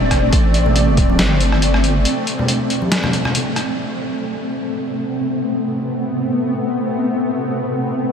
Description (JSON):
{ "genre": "deep dubstep", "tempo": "139 BPM", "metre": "4/4", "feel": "swing 56% on 16ths, half-time", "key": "A minor", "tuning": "A4 = 442 Hz", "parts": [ { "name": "granular cloud pad", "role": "sustained chords", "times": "0.0-8.1 s", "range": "A3 to D5", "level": "-19 LUFS", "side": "equal", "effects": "built-in reverb, analog chorus" }, { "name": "deep soft wobble bass", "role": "bass", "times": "0.0-2.1 s", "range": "E1 to A1", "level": "-17 LUFS", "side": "equal", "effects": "chorus" }, { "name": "electronic kick drum", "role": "drums", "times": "0.1-1.1 s", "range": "none", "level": "-17 LUFS", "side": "equal", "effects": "overdrive" }, { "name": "trip hop sampler-style drum kit", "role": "drums", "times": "0.1-3.7 s", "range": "hi-hat, rim click, snare drum", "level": "-22 LUFS", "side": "equal", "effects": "low-pass filter on snare, low-pass filter on hats, low-pass filter on room" }, { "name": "congas", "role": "percussion", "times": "0.7-3.3 s", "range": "none", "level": "-25 LUFS", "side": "left 1 dB", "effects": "dub echo" } ], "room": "wet huge ambient reverb, RT60 7.7 s", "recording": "dreamy mix soaked in reverb", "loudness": "-16 LUFS", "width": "side -7 dB against mid", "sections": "0.0-3.8 A section; 3.8-8.1 B section", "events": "break 2.1-3.8", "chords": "0.0 Am; 3.8 Amadd9" }